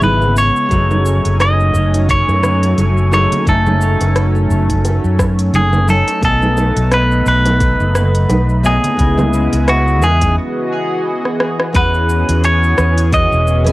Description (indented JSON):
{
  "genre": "sunset chillout",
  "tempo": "87 BPM",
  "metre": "4/4",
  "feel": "swing 57% on 16ths",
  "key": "F# dorian",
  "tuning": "A4 = 440 Hz",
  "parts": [
    { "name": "clean electric guitar", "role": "melody", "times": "0.0-13.7 s", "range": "F#4 to D#5", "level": "-17 LUFS", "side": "equal", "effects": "vintage 12-bit sampler grit, tape echo" },
    { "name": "nylon-string guitar", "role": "accompaniment", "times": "0.0-13.7 s", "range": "C#3 to G#5", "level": "-22 LUFS", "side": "moving between left 2 dB and right 7 dB", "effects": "auto-pan, cassette tape, tape echo" },
    { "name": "lush unison pad", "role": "sustained chords", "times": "0.0-13.7 s", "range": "C#3 to G#5", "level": "-20 LUFS", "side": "equal", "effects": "chorus, cassette tape" },
    { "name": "fretless electric bass", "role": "bass", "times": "0.0-13.7 s", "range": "E1 to F#2", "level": "-14 LUFS", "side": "equal", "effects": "lush chorus" },
    { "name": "deep house drum kit", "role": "drums", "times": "0.0-13.7 s", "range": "hi-hat, rim click, shaker", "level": "-21 LUFS", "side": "equal", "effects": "studio reverb, cassette tape" },
    { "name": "congas and bongos", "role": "percussion", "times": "0.0-10.3 s", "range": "none", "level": "-22 LUFS", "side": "right 2 dB", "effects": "none" },
    { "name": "electronic kick drum", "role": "drums", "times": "0.7-13.3 s", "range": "none", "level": "-18 LUFS", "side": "equal", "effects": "studio reverb, cassette tape" }
  ],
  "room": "moderate booth ambience, RT60 0.2 s",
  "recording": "home recording on cassette",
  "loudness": "-11 LUFS",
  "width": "side -18 dB against mid",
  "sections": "0.0-11.7 A section; 11.7-13.7 B section",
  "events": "break 10.4-11.7; drum fill 11.2-11.7",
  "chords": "0.0 C#m7; 0.7 F#m69; 6.2 B13; 9.0 C#m9; 10.4 Emaj7; 11.7 E69"
}